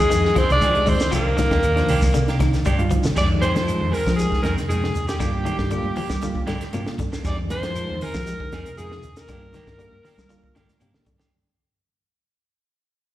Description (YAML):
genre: afrobeat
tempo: 118 BPM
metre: 4/4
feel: straight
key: F dorian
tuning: A4 = 439 Hz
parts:
  - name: bright alto saxophone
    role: melody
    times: 0.0-11.1 s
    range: G4 to D5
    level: -24 LUFS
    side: equal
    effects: slapback echo
  - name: raspy alto saxophone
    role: second line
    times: 0.0-11.1 s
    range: Ab3 to D5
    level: -30 LUFS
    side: right 4 dB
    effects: slapback echo
  - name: electric guitar at the edge of break-up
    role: arpeggios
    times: 0.0-11.2 s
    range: C3 to Ab3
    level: -30 LUFS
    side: left 6 dB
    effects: tremolo, slapback echo
  - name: semi-hollow electric guitar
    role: stabs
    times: 0.0-11.3 s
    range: Eb3 to Ab4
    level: -32 LUFS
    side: right 4 dB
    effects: slapback echo
  - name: fingered electric bass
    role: bass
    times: 0.1-11.2 s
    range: C2 to G3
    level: -24 LUFS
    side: equal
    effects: none
  - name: compact cocktail drum kit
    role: drums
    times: 0.1-11.3 s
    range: crash cymbal, hi-hat, kick drum, snare drum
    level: -25 LUFS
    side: equal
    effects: none
  - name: shekere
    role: percussion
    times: 0.1-11.3 s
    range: none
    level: -35 LUFS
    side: left 1 dB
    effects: slapback echo
  - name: bright reed electric piano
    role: accompaniment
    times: 0.2-11.1 s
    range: Ab3 to C5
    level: -32 LUFS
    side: right 2 dB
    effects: fast tremolo, slapback echo
  - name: claves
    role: percussion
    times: 0.4-10.9 s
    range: none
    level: -40 LUFS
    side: left 3 dB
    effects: none
  - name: congas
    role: percussion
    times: 0.4-11.3 s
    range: none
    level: -31 LUFS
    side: right 1 dB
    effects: none
room: light reverb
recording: live gig heard through the venue's PA, recital hall reverb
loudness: -19 LUFS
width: side -14 dB against mid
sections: 0.0-3.2 A section; 3.2-11.3 B section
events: drum fill 2.7-3.2, 10.6-11.3; fade-out 3.2-11.3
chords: 0.0 Fm7; 1.1 Cm9; 3.2 Fm7; 5.2 Gm7; 7.2 Fm7; 9.3 Gm7